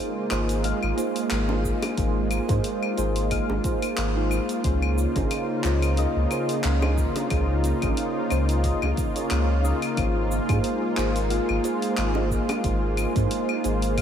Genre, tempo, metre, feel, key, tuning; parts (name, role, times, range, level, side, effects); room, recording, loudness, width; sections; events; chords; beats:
sunset chillout; 90 BPM; 4/4; swing 55% on 16ths; Ab major; A4 = 440 Hz
soft electric-piano-like synth keys; accompaniment; 0.0-14.0 s; Bb3 to F5; -28 LUFS; right 2 dB; chorus, phaser, auto-pan, analog delay
lush unison pad; sustained chords; 0.0-14.0 s; Db3 to F4; -28 LUFS; left 1 dB; chorus
warm sub bass; bass; 0.3-14.0 s; Ab1 to Ab2; -25 LUFS; equal
deep house drum kit; drums; 0.3-14.0 s; cabasa, claves, handclaps, hi-hat; -33 LUFS; left 2 dB
bongos; percussion; 1.5-13.3 s; -38 LUFS; right 1 dB
electronic kick drum; drums; 1.6-14.0 s; -29 LUFS; equal
moderate cathedral reverb, RT60 5.3 s; dreamy mix soaked in reverb; -22 LUFS; side -9 dB against mid
0.0-14.0 A section
0.0 Ab69; 4.6 Dbmaj9; 10.0 Ab69
0.64 1.31 | 1.98 2.64 3.31 3.98 | 4.64 5.31 5.98 6.64 | 7.31 7.98 8.64 9.31 | 9.98 10.64 11.31 11.98 | 12.64 13.31 13.98